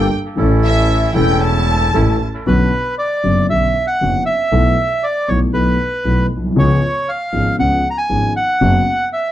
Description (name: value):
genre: tango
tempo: 117 BPM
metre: 4/4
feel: rubato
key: B minor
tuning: A4 = 441 Hz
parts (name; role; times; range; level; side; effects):
- warm studio violin section; second line; 0.0-2.2 s; E5 to A5; -20 LUFS; left 1 dB; none
- dark concert grand piano; accompaniment; 0.0-8.8 s; E1 to A4; -17 LUFS; left 2 dB; none
- bandoneon; stabs; 0.0-2.2 s; C#4 to A4; -22 LUFS; right 3 dB; analog delay
- clear double bass; bass; 0.0-8.8 s; E1 to C#2; -18 LUFS; right 1 dB; none
- bandoneon; melody; 2.5-9.3 s; B4 to A#5; -17 LUFS; right 1 dB; none
room: moderate club reverb, RT60 0.7 s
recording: dark, warm production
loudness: -13 LUFS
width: side -12 dB against mid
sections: 0.0-2.5 A section; 2.5-9.3 B section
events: violin section solo 0.0-2.5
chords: 0.4 A; 2.5 Bmadd9; 4.5 Esus4/B; 6.6 C#7; 8.6 F#sus4